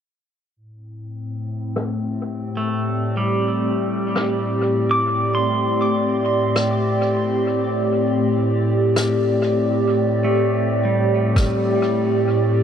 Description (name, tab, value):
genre	ambient dub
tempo	100 BPM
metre	4/4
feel	swing 56% on 16ths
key	A minor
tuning	A4 = 439 Hz
part	warbly tape-like pad	sustained chords	1.0-12.6 s	A2 to D5	-18 LUFS	equal	chorus, built-in reverb, phaser
part	rim click	drums	1.8-11.5 s	none	-28 LUFS	left 1 dB	low-pass filter on snare, low-pass filter on room, dub echo
part	pedal steel guitar	arpeggios	2.6-12.6 s	G3 to D6	-25 LUFS	right 2 dB	low-pass filter, tape echo
part	electronic kick drum	drums	11.4-11.5 s	none	-17 LUFS	equal	none
room	moderate huge ambient reverb, RT60 4.7 s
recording	none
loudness	-18 LUFS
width	side -8 dB against mid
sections	0.6-10.2 A section; 10.2-12.6 B section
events	filter sweep on drum 0.6-10.2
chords	0.6 Am7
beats	| 0.56 1.16 1.76 2.36 | 2.96 3.56 4.16 4.76 | 5.36 5.96 6.56 7.16 | 7.76 8.36 8.96 9.56 | 10.16 10.76 11.36 11.96 | 12.56